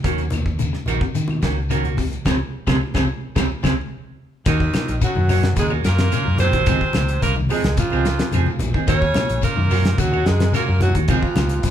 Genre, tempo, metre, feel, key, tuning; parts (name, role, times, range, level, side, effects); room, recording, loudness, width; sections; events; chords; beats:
afrobeat; 109 BPM; 4/4; straight; Eb dorian; A4 = 439 Hz
electric guitar at the edge of break-up; arpeggios; 0.0-11.7 s; C3 to Gb3; -28 LUFS; left 4 dB
semi-hollow electric guitar; stabs; 0.0-11.5 s; Eb3 to Ab4; -26 LUFS; right 5 dB
vintage muted fingered electric bass; bass; 0.0-11.7 s; Bb1 to Eb3; -21 LUFS; equal
damped 70s drum kit; drums; 0.0-11.7 s; hi-hat, kick drum, snare drum; -23 LUFS; equal
shekere; percussion; 0.0-11.7 s; -30 LUFS; left 6 dB
claves; percussion; 0.1-11.5 s; -37 LUFS; left 4 dB
congas; percussion; 0.3-11.7 s; -28 LUFS; left 1 dB
breathy alto saxophone; melody; 4.5-11.7 s; Eb4 to Db5; -24 LUFS; right 3 dB
breathy tenor saxophone; second line; 4.5-11.7 s; Eb3 to Db4; -31 LUFS; right 6 dB
raspy baritone saxophone; second line; 4.5-11.7 s; Eb2 to Db3; -31 LUFS; left 5 dB
moderate large studio reverb, RT60 1.1 s; band playing live in one room; -17 LUFS; side -10 dB against mid
0.0-4.5 A section; 4.5-11.7 B section
band accent 2.3-4.5
0.0 Ebm7; 2.3 Dbmaj7; 4.5 Ebm7; 6.7 Dbmaj7; 8.9 Ebm7; 11.1 Dbmaj7
| 0.04 0.59 1.15 1.70 | 2.25 2.81 3.36 3.91 | 4.46 5.01 5.57 6.12 | 6.67 7.22 7.78 8.33 | 8.88 9.43 9.98 10.54 | 11.09 11.64